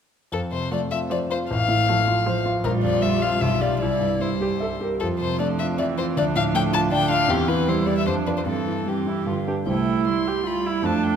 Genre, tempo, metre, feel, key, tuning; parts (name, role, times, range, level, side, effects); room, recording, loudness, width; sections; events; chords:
quick classical-period movement for piano quartet; 147-160 BPM; 3/4; rubato; F major, C major from 5.0 s; A4 = 440 Hz
warm violin; melody; 0.3-11.2 s; G4 to C6; -25 LUFS; left 6 dB
clear grand piano; accompaniment; 0.3-11.2 s; A1 to F5; -24 LUFS; left 1 dB
rich cello; second line; 0.7-11.2 s; D3 to A3; -28 LUFS; right 8 dB
dark viola; accompaniment; 0.7-11.2 s; C4 to Bb4; -28 LUFS; right 4 dB
wet concert hall reverb, RT60 2.1 s; -20 LUFS; side -8 dB against mid
0.3-9.7 A section; 9.7-11.2 B section
0.3 F; 1.5 F/A; 2.6 Gm7/Bb; 3.4 G7/B; 3.8 C; 5.0 Fmaj7; 6.2 Dm; 7.3 C/E; 8.1 Dm7/F; 8.5 C/G; 9.3 G; 9.7 C